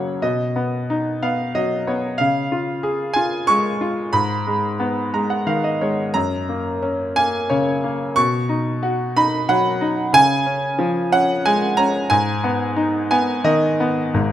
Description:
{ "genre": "classical, lyrical solo piano", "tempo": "90 BPM", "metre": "3/4", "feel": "rubato", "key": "unclear", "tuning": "A4 = 440 Hz", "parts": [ { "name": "bright grand piano", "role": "solo", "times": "0.0-14.3 s", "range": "Ab1 to C#6", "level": "-17 LUFS", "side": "equal", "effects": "none" } ], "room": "light reverb", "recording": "close, detailed microphones", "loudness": "-17 LUFS", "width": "side -11 dB against mid", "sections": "0.0-14.1 A section", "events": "grand piano fill 0.9-2.2, 4.8-6.1, 12.8-14.1", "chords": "0.2 B; 2.2 C#; 4.1 G#m; 6.1 F#; 8.2 B; 10.1 C#; 12.1 G#m" }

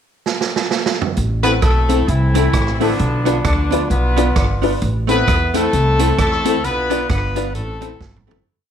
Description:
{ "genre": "ska", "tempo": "132 BPM", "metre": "4/4", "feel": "swing 59% on 8ths", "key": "A minor", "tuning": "A4 = 440 Hz", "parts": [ { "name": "swinging big-band drum kit", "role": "drums", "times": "0.3-8.4 s", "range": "hi-hat, kick drum, rim click, snare drum, toms", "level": "-20 LUFS", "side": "right 3 dB", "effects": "slapback echo" }, { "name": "upright bass", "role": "bass", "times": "1.2-8.4 s", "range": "G1 to E2", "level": "-18 LUFS", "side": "equal", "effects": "none" }, { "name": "mellow horn section", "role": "melody", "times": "1.4-8.4 s", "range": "D3 to B4", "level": "-20 LUFS", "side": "left 1 dB", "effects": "none" }, { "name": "archtop guitar, miked and amplified", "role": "accompaniment", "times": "1.4-8.4 s", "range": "A3 to F4", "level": "-24 LUFS", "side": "right 12 dB", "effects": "tube saturation, slapback echo" }, { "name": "honky-tonk upright piano", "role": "stabs", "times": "1.4-8.4 s", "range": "C4 to B4", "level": "-22 LUFS", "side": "left 12 dB", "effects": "none" } ], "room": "light reverb, studio reverb", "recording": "1960s-style stereo with parts hard left and right", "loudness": "-14 LUFS", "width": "side -8 dB against mid", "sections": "0.0-1.2 pickup bar; 1.2-8.5 A section", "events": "drum fill 0.3-1.2, 8.0-8.5; fade-out 6.6-8.5", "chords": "0.0 N.C.; 1.2 Am; 3.0 Bdim; 4.8 Am; 6.6 Bdim; 7.6 Am" }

